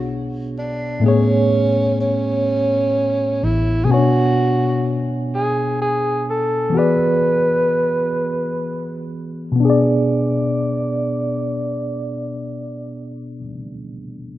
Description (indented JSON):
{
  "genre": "slow six-eight R&B",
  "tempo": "42 BPM (dotted quarters)",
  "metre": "6/8",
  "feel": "straight",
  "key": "B dorian",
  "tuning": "A4 = 440 Hz",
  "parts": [
    { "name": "breathy tenor saxophone", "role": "melody", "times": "0.0-13.2 s", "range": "C#4 to D5", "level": "-20 LUFS", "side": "right 1 dB", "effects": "none" },
    { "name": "tine electric piano", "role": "accompaniment", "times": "0.0-14.4 s", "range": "A2 to G#5", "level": "-19 LUFS", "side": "left 1 dB", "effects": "auto-pan" },
    { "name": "vintage muted fingered electric bass", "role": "bass", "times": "0.0-3.9 s", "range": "A1 to B1", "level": "-21 LUFS", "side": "equal", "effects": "none" }
  ],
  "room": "light reverb, small room ambience",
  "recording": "rough home demo mix, low-pass filter",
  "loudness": "-16 LUFS",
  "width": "side -14 dB against mid",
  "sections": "0.0-9.6 A section; 9.6-12.5 B section",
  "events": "filter sweep 0.0-9.6",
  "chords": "0.0 Bm69; 1.0 Amaj9; 3.9 Bm69; 6.7 E9; 9.6 Bm6",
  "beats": "| 1.03 2.46 | 3.89 5.32 | 6.74 8.17 | 9.60 11.03"
}